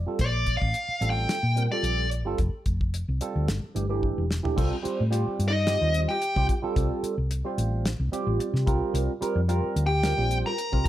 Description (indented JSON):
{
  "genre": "electric jazz fusion",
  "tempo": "110 BPM",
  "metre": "4/4",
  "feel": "swing 54% on 16ths",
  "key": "G dorian, C dorian from 4.6 s",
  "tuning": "A4 = 442 Hz",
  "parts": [
    { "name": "barky tine electric piano", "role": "accompaniment", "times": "0.0-10.9 s", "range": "E3 to D5", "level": "-30 LUFS", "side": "right 3 dB", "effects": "overdrive, phaser" },
    { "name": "hollow-body short-scale fingered electric bass", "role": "bass", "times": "0.0-10.8 s", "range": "E1 to C3", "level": "-26 LUFS", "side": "equal", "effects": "none" },
    { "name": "dark smooth lead guitar", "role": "melody", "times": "0.2-2.1, 5.5-6.5, 9.9-10.8 s", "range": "D5 to Bb5", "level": "-27 LUFS", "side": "left 1 dB", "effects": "overdrive, slapback echo" },
    { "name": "damped 70s drum kit", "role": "drums", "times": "0.2-10.9 s", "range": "crash cymbal, hi-hat, kick drum, snare drum, toms", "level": "-29 LUFS", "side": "equal", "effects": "none" },
    { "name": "vintage hollow-body jazz guitar", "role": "second line", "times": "5.5-6.5, 9.9-10.8 s", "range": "Eb4 to Bb4", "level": "-32 LUFS", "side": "equal", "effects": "none" }
  ],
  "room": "light reverb",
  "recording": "none",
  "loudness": "-24 LUFS",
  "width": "side -13 dB against mid",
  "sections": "0.0-4.6 A section; 4.6-10.9 B section",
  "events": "tine electric piano fill 0.0, 8.1-8.9; drum fill 4.0-4.6",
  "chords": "0.2 Bbsus2; 2.4 Fadd9; 3.5 Gsus2; 4.6 Cm6; 8.7 Gm7"
}